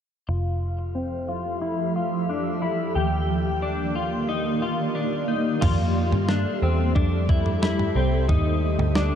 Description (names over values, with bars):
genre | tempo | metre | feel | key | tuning
dream pop | 90 BPM | 4/4 | straight | F major | A4 = 438 Hz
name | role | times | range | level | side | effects
granular cloud pad | sustained chords | 1.1-9.2 s | Eb3 to E5 | -26 LUFS | right 1 dB | built-in reverb, low-pass filter
clean electric guitar | arpeggios | 0.3-9.2 s | C4 to G4 | -27 LUFS | left 3 dB | analog chorus, low-pass filter, digital delay
vintage muted picked electric bass | bass | 0.3-9.1 s | F1 to G2 | -25 LUFS | equal | none
clean 12-bit digital drum machine | drums | 5.6-9.1 s | crash cymbal, kick drum, snare drum, toms | -24 LUFS | right 1 dB | none
room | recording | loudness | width
light reverb, digital ambience | dark, warm production | -21 LUFS | side -8 dB against mid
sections
0.3-5.6 A section; 5.6-9.2 B section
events
filter sweep 0.3-5.6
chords
0.3 Fmaj9; 3.0 Ebmaj7; 5.6 Fmaj9; 8.3 Ebmaj7